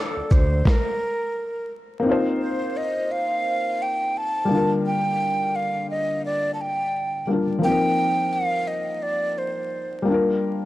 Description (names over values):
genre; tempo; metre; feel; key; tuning
lo-fi hip hop; 86 BPM; 4/4; swing 58% on 16ths; unclear; A4 = 440 Hz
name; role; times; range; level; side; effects
breathy mellow silver concert flute; melody; 0.0-10.1 s; A4 to A5; -24 LUFS; right 1 dB; none
felt-muted upright piano; accompaniment; 0.0-10.7 s; D3 to D5; -24 LUFS; left 2 dB; cassette tape
fat analog bass; bass; 0.2-0.6 s; D2; -22 LUFS; equal; none
dusty soul sampler-style drum kit; drums; 0.3-0.8 s; kick drum, rim click, shaker, snare drum; -19 LUFS; equal; none
room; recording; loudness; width
light reverb, small room ambience; dark, warm production, vinyl crackle; -21 LUFS; side -16 dB against mid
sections
0.0-2.0 A section; 2.0-10.7 B section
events
stop 0.7-2.0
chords
0.0 Bb; 0.7 N.C.; 2.0 F7sus4; 4.5 Gm7; 7.6 F7sus4; 10.1 Gm7